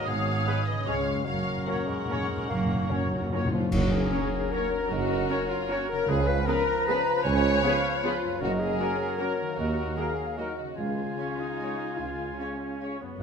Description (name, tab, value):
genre	classical, orchestral ballroom waltz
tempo	139-166 BPM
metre	3/4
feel	rubato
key	F# major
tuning	A4 = 441 Hz
part	muted symphonic violin section	melody	0.0-12.9 s	C#5 to A#5	-39 LUFS	left 3 dB	none
part	mellow large flute ensemble	second line	0.0-13.2 s	C#5 to D#6	-35 LUFS	left 1 dB	none
part	muted symphonic violin section	second line	0.0-13.2 s	E#4 to C#5	-34 LUFS	left 6 dB	none
part	warm clarinet	second line	0.0-13.2 s	B3 to C#5	-34 LUFS	left 1 dB	none
part	warm cor anglais	second line	0.0-13.2 s	G#4 to G#5	-37 LUFS	right 3 dB	none
part	mellow bassoon	accompaniment	0.0-13.2 s	E#3 to A#3	-37 LUFS	right 2 dB	none
part	concert harp	arpeggios	0.0-13.2 s	F#2 to D#5	-38 LUFS	left 6 dB	none
part	muted symphonic cello section	bass	0.1-13.2 s	C#2 to G#2	-34 LUFS	right 3 dB	none
part	muted symphonic double bass section	bass	0.1-13.2 s	F#1 to D#2	-36 LUFS	right 4 dB	none
part	muted symphonic viola section	accompaniment	0.5-13.2 s	A#3 to A#4	-36 LUFS	right 2 dB	none
part	mellow French horn section	sustained chords	0.5-13.0 s	E#3 to D#4	-40 LUFS	left 4 dB	none
part	clear trumpet section	stabs	0.5-13.0 s	A#4 to C#5	-39 LUFS	equal	none
part	timpani	percussion	1.3-4.3, 8.4-13.2 s	F#2 to C#3	-33 LUFS	left 2 dB	none
part	warm tuba	bass	3.7-13.2 s	F#1 to D#2	-33 LUFS	right 5 dB	none
part	clash cymbals and concert bass drum	percussion	3.7-4.5 s	none	-33 LUFS	right 1 dB	none
room	moderate recital hall reverb, RT60 1.3 s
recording	close, detailed microphones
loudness	-25 LUFS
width	side -6 dB against mid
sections	0.0-3.7 A section; 3.7-13.2 B section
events	timpani fill 1.3-3.7; band accent 3.7-4.1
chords	0.1 G#m7; 0.9 C#; 1.3 F#; 6.1 C#7; 8.4 F#; 9.6 D#m; 10.8 C#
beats	| 0.07 0.46 0.88 | 1.27 1.68 2.10 | 2.50 2.91 3.33 | 3.73 4.12 4.53 | 4.91 5.30 5.71 | 6.09 6.47 6.87 | 7.25 7.63 8.03 | 8.41 8.79 9.20 | 9.58 9.97 10.38 | 10.77 11.17 11.59 | 11.99 12.39 12.81 | 13.20